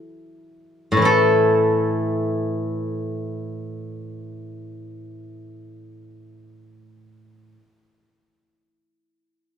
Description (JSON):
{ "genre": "chinese traditional, Chinese solo plucked strings", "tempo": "free time", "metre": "none", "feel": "none", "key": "unclear", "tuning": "A4 = 439 Hz", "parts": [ { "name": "steel-string zither", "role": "solo", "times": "0.9-7.6 s", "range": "A2 to A4", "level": "-20 LUFS", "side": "left 1 dB", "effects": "none" } ], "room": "light reverb", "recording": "dark, warm production", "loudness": "-18 LUFS", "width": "side -8 dB against mid", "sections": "0.0-1.0 A section; 1.0-5.0 B section", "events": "slowing down 0.0-1.0", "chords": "none", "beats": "free time" }